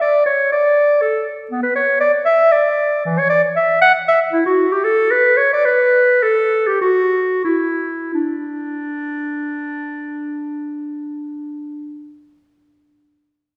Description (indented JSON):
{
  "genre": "classical, baroque-style fantasia for unaccompanied clarinet",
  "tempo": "86-122 BPM",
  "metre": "3/4",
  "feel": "rubato",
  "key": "D major",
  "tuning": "A4 = 440 Hz",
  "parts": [
    { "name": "clear clarinet", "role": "solo", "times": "0.0-12.0 s", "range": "E3 to F#5", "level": "-17 LUFS", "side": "equal", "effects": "none" }
  ],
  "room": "wet recital hall reverb, RT60 1.8 s",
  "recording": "heard from further back in the room",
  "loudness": "-16 LUFS",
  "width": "mono",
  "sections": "0.0-8.1 A section; 8.1-12.2 B section",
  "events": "slowing down 3.8-8.1",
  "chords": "none",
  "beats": "| 0.01 0.51 1.00 | 1.50 2.00 2.50 | 3.03 3.56 4.07 | 4.58 5.11 5.65 | 6.22 6.82 7.45 | 8.13 8.80 9.48 | 10.16 10.82 11.49"
}